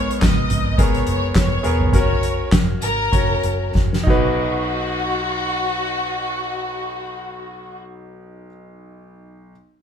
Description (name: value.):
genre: piano-driven pop.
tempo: 92-108 BPM.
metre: 4/4.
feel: swing 56% on 16ths.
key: B major.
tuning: A4 = 441 Hz.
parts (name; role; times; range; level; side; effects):
warm studio violin section; melody; 0.0-7.8 s; F#4 to D#5; -24 LUFS; left 1 dB; none.
clear concert grand piano; accompaniment; 0.0-9.5 s; B1 to C#5; -25 LUFS; left 2 dB; none.
vintage muted picked electric bass; bass; 0.0-8.5 s; E1 to B1; -25 LUFS; equal; none.
soft-mallet drum kit; drums; 0.1-4.2 s; crash cymbal, handclaps, hi-hat, kick drum, snare drum, toms; -19 LUFS; equal; none.
room: moderate studio reverb, RT60 0.8 s.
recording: band playing live in one room.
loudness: -17 LUFS.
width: side -8 dB against mid.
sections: 0.0-4.4 A section; 4.4-7.0 B section.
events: slowing down 0.0-4.4; drum fill 3.8-4.4.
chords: 0.0 G#madd9; 1.9 F#; 4.1 B.